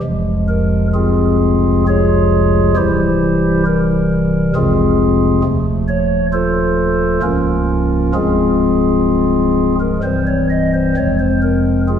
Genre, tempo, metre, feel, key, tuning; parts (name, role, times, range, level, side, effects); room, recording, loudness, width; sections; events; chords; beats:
classical, chorale-style piece for pipe organ; 66 BPM; 3/4; straight; F minor; A4 = 442 Hz
pipe organ, stopped flute; solo; 0.0-12.0 s; C1 to Eb5; -12 LUFS; equal
wet scoring stage reverb, RT60 1.6 s; -12 LUFS; side -8 dB against mid
0.0-12.0 A section
0.0 Fm; 2.8 C; 4.6 Fm; 5.4 F7/Eb; 7.2 Bbm/Db; 8.2 Fm/C; 10.0 C; 11.0 Fm
| 0.03 0.94 1.87 | 2.77 3.66 4.55 | 5.44 6.33 7.23 | 8.15 9.09 10.03 | 10.97 11.88